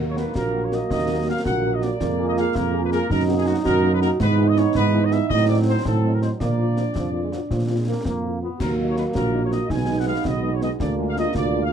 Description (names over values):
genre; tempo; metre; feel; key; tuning
military-style march for wind band; 109 BPM (dotted quarters); 6/8; straight; Eb minor; A4 = 440 Hz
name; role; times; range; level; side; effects
mellow euphonium; second line; 0.0-11.7 s; D4 to Gb4; -26 LUFS; right 6 dB; none
mellow French horn section; accompaniment; 0.0-11.6 s; F3 to Bb4; -30 LUFS; left 6 dB; none
clear trombone section; sustained chords; 0.0-11.7 s; E3 to Eb4; -29 LUFS; right 1 dB; none
dark tuba; bass; 0.0-11.7 s; Bb1 to Bb2; -22 LUFS; right 2 dB; none
mellow trumpet section; melody; 0.1-11.7 s; Gb4 to Ab5; -28 LUFS; equal; none
concert snare drum, concert bass drum and clash cymbals; drums; 0.2-11.5 s; none; -30 LUFS; left 2 dB; none
room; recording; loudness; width
moderate small room reverb, RT60 0.6 s; dark, warm production; -19 LUFS; side -8 dB against mid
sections
0.0-11.7 A section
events
none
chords
0.0 Ebm; 2.0 Bb5/F; 3.1 Ebm/Gb; 4.2 E/G#; 5.3 Adim7; 6.4 Bb; 8.6 Ebm; 9.7 Abm/Cb; 10.8 Bb7/D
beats
0.35 | 0.90 1.45 | 2.00 2.55 | 3.10 3.65 | 4.20 4.75 | 5.30 5.85 | 6.40 6.95 | 7.50 8.05 | 8.60 9.15 | 9.70 10.25 | 10.80 11.35